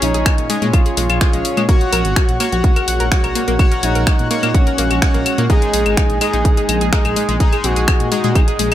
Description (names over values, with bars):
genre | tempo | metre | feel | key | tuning
melodic techno | 126 BPM | 4/4 | straight | unclear | A4 = 440 Hz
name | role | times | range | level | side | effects
expressive portamento lead | melody | 0.0-8.7 s | Db4 to Ab4 | -22 LUFS | right 1 dB | chorus, sidechain pumping, tape echo
analog pluck | arpeggios | 0.0-8.7 s | Ab3 to Gb6 | -23 LUFS | left 2 dB | chorus, sidechain pumping, ping-pong delay
sync-sweep polysynth | stabs | 0.0-8.7 s | Ab3 to Gb5 | -22 LUFS | left 2 dB | chorus, cassette tape, sidechain pumping, ping-pong delay
dark detuned saw bass | bass | 0.0-8.7 s | Ab1 to Bb2 | -20 LUFS | equal | sidechain pumping
overtone-sweeping drone | drone | 0.0-8.7 s | Bb2 to Ab3 | -30 LUFS | right 1 dB | none
house drum kit | drums | 0.0-8.7 s | claves, finger snaps, hi-hat | -21 LUFS | left 3 dB | sidechain pumping on hats, sidechain pumping on cymbals, sidechain pumping on perc
electronic kick drum | drums | 0.3-8.5 s | none | -14 LUFS | equal | none
room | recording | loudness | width
digital ambience | none | -13 LUFS | side -12 dB against mid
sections
0.0-8.7 A section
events
none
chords
0.0 Bbm; 1.7 Gb; 5.5 Ab5